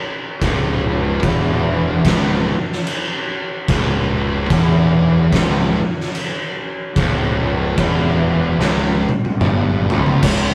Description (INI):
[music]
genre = stoner and doom metal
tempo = 73 BPM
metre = 4/4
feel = swing 61% on 8ths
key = C# minor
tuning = A4 = 440 Hz
[part]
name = fuzz guitar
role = riff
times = 0.4-10.5 s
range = C#2 to G2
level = -20 LUFS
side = equal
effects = distortion
[part]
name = fuzz fingered electric bass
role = bass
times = 0.4-10.5 s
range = C#1 to G1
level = -24 LUFS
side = equal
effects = overdrive
[part]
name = oversized low-tuned drum kit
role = drums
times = 0.4-10.5 s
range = crash cymbal, kick drum, snare drum, toms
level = -21 LUFS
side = equal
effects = none
[sound]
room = light reverb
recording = rough rehearsal-room recording, faint mains hum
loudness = -17 LUFS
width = mono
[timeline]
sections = 0.0-10.2 A section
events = drum fill 8.6-10.2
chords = 0.0 C#m